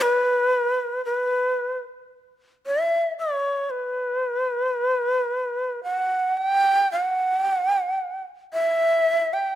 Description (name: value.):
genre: japanese traditional.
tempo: 56 BPM.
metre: 2/4.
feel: rubato.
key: E kumoi.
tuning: A4 = 440 Hz.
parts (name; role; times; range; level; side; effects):
breathy shakuhachi; solo; 0.0-9.6 s; B4 to G5; -21 LUFS; equal; none.
room: light reverb.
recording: close, detailed microphones.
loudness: -21 LUFS.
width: side -12 dB against mid.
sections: 0.0-9.6 A section.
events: none.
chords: none.